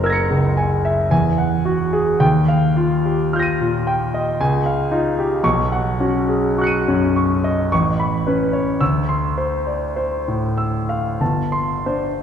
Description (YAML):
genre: classical, impressionist solo piano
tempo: 43-59 BPM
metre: 3/4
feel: rubato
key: unclear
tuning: A4 = 439 Hz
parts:
  - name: clear concert grand piano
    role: solo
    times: 0.0-12.2 s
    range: F#1 to Eb7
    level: -16 LUFS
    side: equal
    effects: none
room: wet scoring stage reverb, RT60 1.9 s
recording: heard from further back in the room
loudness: -16 LUFS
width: side -8 dB against mid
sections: 0.0-12.2 A section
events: none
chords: 0.0 F#9; 1.1 Eadd9; 2.2 Ebadd9; 4.4 Dbadd9; 5.4 Badd9; 7.7 Aadd9; 8.8 Dm9; 11.2 Gsus24